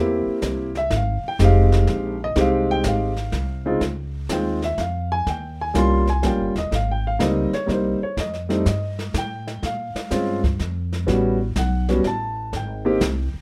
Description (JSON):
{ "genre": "jazz piano trio", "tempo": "124 BPM", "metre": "3/4", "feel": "swing 68% on 8ths", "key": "F minor", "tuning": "A4 = 441 Hz", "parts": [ { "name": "warm grand piano", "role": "melody", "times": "0.0-13.3 s", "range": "Db3 to C6", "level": "-24 LUFS", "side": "equal", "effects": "none" }, { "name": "upright bass", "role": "bass", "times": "0.0-13.4 s", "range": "Eb1 to Bb2", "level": "-26 LUFS", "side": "equal", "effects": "none" }, { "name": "jazz brush drum kit", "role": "drums", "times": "0.4-13.4 s", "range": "brushed snare drum, hi-hat, kick drum, snare drum", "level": "-30 LUFS", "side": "equal", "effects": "none" } ], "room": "light reverb", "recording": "none", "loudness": "-22 LUFS", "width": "mono", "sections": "0.0-3.8 A section; 3.8-13.4 A section", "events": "grand piano solo 0.0-13.4", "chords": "0.0 C7; 0.9 Fm7; 3.8 Dbmaj7; 5.3 Eb7; 6.7 Abmaj9; 8.2 F7; 9.6 Bbm7; 11.1 A13; 12.5 Abmaj7" }